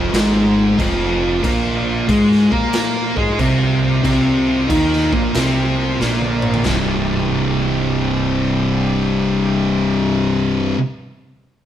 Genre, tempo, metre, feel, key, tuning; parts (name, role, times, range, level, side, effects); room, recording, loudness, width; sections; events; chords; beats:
stoner and doom metal; 92 BPM; 4/4; swing 66% on 8ths; C minor; A4 = 440 Hz
overdriven tonewheel organ; sustained chords; 0.0-10.0 s; F3 to D5; -32 LUFS; right 1 dB
distorted electric guitar; riff; 0.0-10.8 s; C2 to Bb4; -23 LUFS; equal; distortion
thick fuzz guitar; riff; 0.0-10.8 s; C2 to Bb4; -19 LUFS; left 5 dB; distortion
thick fuzz guitar; riff; 0.0-10.8 s; C2 to Bb4; -20 LUFS; right 4 dB; distortion
fuzz fingered electric bass; bass; 0.0-10.7 s; C1 to Bb2; -24 LUFS; equal; overdrive
raw garage drum kit; drums; 0.1-6.8 s; china cymbal, crash cymbal, kick drum, snare drum, toms; -23 LUFS; equal
moderate stone room reverb, RT60 1.2 s; band playing live in one room; -14 LUFS; side -10 dB against mid
0.0-6.7 A section; 6.7-9.3 B section
drum fill 6.0-6.7
0.0 F5; 1.4 Bb5; 6.7 C5
0.13 0.78 | 1.44 2.09 2.74 3.39 | 4.04 4.70 5.35 6.00 | 6.65 7.30 7.95 8.60